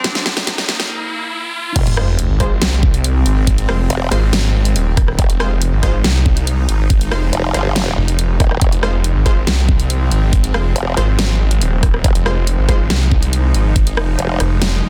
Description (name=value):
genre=heavy wobble dubstep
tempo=140 BPM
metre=4/4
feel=half-time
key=F minor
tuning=A4 = 436 Hz
part: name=clear cello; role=melody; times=0.0-1.7 s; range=Bb3 to C4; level=-31 LUFS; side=equal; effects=tape echo
part: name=evolving wavetable pad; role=sustained chords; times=0.0-14.9 s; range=F2 to Eb4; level=-29 LUFS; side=equal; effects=ensemble chorus, built-in reverb, sidechain pumping
part: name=dubstep drum kit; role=drums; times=0.0-14.7 s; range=crash cymbal, hi-hat, rim click, snare drum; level=-22 LUFS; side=equal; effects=none
part: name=electronic kick drum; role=drums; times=0.0-13.8 s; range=none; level=-17 LUFS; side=equal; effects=none
part: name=riser and sub drop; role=sound effects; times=0.0-3.5 s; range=none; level=-25 LUFS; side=equal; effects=none
part: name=formant-sweep wobble bass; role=bass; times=1.8-14.4 s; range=Eb1 to G1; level=-20 LUFS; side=equal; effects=chorus, overdrive
part: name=snarling distorted saw bass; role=bass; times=1.9-14.8 s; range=Eb1 to C2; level=-18 LUFS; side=equal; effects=distortion, overdrive
part: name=orchestra-hit-like synth stab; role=stabs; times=2.0-12.8 s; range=Ab3 to C5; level=-28 LUFS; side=equal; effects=built-in reverb, tape echo
room=little or no reverb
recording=dense, heavily limited modern master, high-pass filter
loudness=-15 LUFS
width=mono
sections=0.0-1.8 A section; 1.8-14.9 B section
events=build-up 0.0-1.8; drum fill 0.0-0.9; riser 0.0-1.8; break 0.9-1.8; drop 1.8-14.9; impact 1.8-3.5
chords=0.0 F5; 1.8 Fm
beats=| 0.04 0.47 0.90 1.33 | 1.76 2.19 2.62 3.04 | 3.47 3.90 4.33 4.76 | 5.19 5.62 6.04 6.47 | 6.90 7.33 7.76 8.19 | 8.62 9.04 9.47 9.90 | 10.33 10.76 11.19 11.62 | 12.04 12.47 12.90 13.33 | 13.76 14.19 14.62